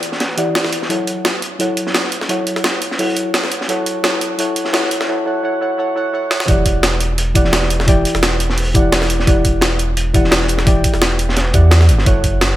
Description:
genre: liquid drum and bass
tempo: 172 BPM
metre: 4/4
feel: swing 54% on 16ths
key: E dorian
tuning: A4 = 440 Hz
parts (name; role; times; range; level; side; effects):
- deep mellow chord stab; accompaniment; 0.0-12.6 s; E3 to G5; -19 LUFS; equal; chorus, ping-pong delay
- crunchy breakbeat drum kit; drums; 0.0-12.5 s; hi-hat, snare drum; -22 LUFS; equal; high-pass filter on hats, high-pass filter on snare, high-pass filter on room
- jungle sampler-style drum kit; drums; 0.0-12.5 s; hi-hat, snare drum; -19 LUFS; equal; none
- warm sub bass; bass; 6.5-12.6 s; E1 to E2; -16 LUFS; equal; none
- electronic kick drum; drums; 6.5-12.3 s; none; -14 LUFS; equal; none
room: moderate scoring stage reverb, RT60 1.6 s, small room ambience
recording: high-pass filter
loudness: -13 LUFS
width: side -14 dB against mid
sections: 0.0-6.5 A section; 6.5-12.6 B section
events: build-up 0.0-6.5; drum fill 6.3; drop 6.5-12.6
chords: 0.0 Em7; 0.7 F#m7; 6.5 Em7; 11.9 F#m7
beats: 0.20 0.55 | 0.90 1.25 1.60 1.95 | 2.30 2.65 3.00 3.34 | 3.69 4.04 4.39 4.74 | 5.09 5.44 5.79 6.13 | 6.48 6.83 7.18 7.53 | 7.88 8.23 8.58 8.93 | 9.27 9.62 9.97 10.32 | 10.67 11.02 11.37 11.71 | 12.06 12.41

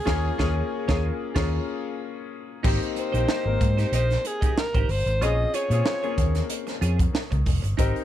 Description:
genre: polished 1980s jazz-funk pop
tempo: 93 BPM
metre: 4/4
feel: swing 54% on 16ths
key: Ab major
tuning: A4 = 440 Hz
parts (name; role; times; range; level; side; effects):
- breathy alto saxophone; melody; 0.0-6.5 s; Ab4 to Eb5; -29 LUFS; equal; slapback echo
- clear concert grand piano; accompaniment; 0.0-8.0 s; Bb3 to Bb4; -30 LUFS; left 7 dB; lush chorus
- clean electric guitar; riff; 0.1-8.0 s; Eb4 to Eb5; -34 LUFS; right 8 dB; analog chorus
- fingered electric bass; bass; 0.1-7.9 s; F1 to Bb2; -24 LUFS; equal; none
- crisp fusion drum kit; drums; 0.1-8.0 s; crash cymbal, hi-hat, kick drum, snare drum; -26 LUFS; right 1 dB; none
room: little or no reverb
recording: none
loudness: -22 LUFS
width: side -12 dB against mid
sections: 0.0-2.6 A section; 2.6-8.0 B section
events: band accent 0.1-2.6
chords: 0.0 Eb9sus4; 2.6 Abmaj7; 5.2 Bbm7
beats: | 0.07 0.71 1.35 2.00 | 2.64 3.28 3.93 4.57 | 5.21 5.86 6.50 7.14 | 7.79

